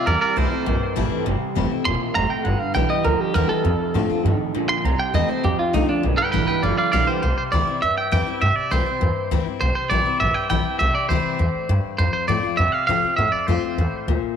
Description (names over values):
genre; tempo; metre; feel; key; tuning
rock; 201 BPM; 4/4; straight; C mixolydian; A4 = 435 Hz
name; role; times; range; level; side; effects
twangy electric guitar; melody; 0.0-14.2 s; D4 to C6; -22 LUFS; right 2 dB; spring reverb, tape echo
picked steel-string acoustic guitar; accompaniment; 0.0-14.4 s; F2 to G4; -26 LUFS; left 11 dB; none
electric guitar through a small old amp; riff; 0.1-7.2 s; F2 to Bb3; -26 LUFS; right 15 dB; ensemble chorus
upright bass; bass; 0.1-14.3 s; E1 to C3; -22 LUFS; equal; none
room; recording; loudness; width
light reverb, studio ambience; 1960s-style stereo with parts hard left and right; -18 LUFS; side -8 dB against mid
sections
0.0-7.2 A section; 7.2-14.4 B section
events
clean electric guitar solo 0.0-7.2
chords
0.1 C; 2.5 G; 3.6 F; 4.8 C; 5.4 F; 6.0 G; 7.2 C; 12.0 F